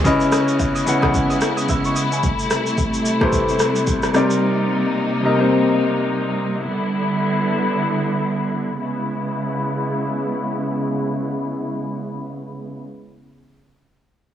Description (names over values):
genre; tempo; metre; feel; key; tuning
amapiano; 110 BPM; 4/4; swing 58% on 16ths; unclear; A4 = 440 Hz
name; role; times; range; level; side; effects
clear grand piano; accompaniment; 0.0-6.6 s; C3 to E6; -19 LUFS; left 2 dB; low-pass filter
rich studio string section; sustained chords; 0.0-12.8 s; C3 to E4; -21 LUFS; right 1 dB; sidechain pumping, low-pass filter
deep house drum kit; drums; 0.1-4.4 s; kick drum, rim click, shaker; -21 LUFS; equal; none
agogo bells and woodblock; percussion; 0.1-2.1 s; none; -31 LUFS; right 3 dB; none
room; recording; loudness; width
light reverb, small room ambience; dry, gritty hardware recording; -18 LUFS; side -10 dB against mid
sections
0.1-8.8 A section; 8.8-13.1 B section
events
none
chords
0.1 C#m7; 2.2 Am7; 4.1 Cm7; 6.6 Em7; 8.8 C#m7